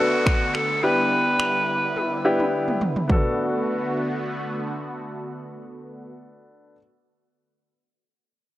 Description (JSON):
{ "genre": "dance-pop", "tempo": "106 BPM", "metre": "4/4", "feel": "straight", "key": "B minor", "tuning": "A4 = 441 Hz", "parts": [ { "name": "bright alto saxophone", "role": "melody", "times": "0.0-2.5 s", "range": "F#4 to B4", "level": "-23 LUFS", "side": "equal", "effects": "analog delay" }, { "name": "warm grand piano", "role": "accompaniment", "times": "0.0-6.8 s", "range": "B3 to A4", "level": "-24 LUFS", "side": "left 1 dB", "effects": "sidechain pumping" }, { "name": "filtered supersaw swell", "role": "sustained chords", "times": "0.0-6.1 s", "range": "D3 to F#4", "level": "-28 LUFS", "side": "right 1 dB", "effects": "sidechain pumping" }, { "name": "downlifter", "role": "sound effects", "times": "0.0-3.1 s", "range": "none", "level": "-35 LUFS", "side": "left 2 dB", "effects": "none" }, { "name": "house drum kit", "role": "drums", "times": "0.3-3.2 s", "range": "finger snaps, kick drum, toms", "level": "-23 LUFS", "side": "equal", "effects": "none" } ], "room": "light reverb, digital ambience", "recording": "dry, gritty hardware recording, cassette tape", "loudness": "-20 LUFS", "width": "side -15 dB against mid", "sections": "0.0-3.1 A section; 3.1-5.4 B section", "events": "drum fill 2.0-3.1", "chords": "0.0 Bm7; 0.8 Em7; 3.1 Bm7" }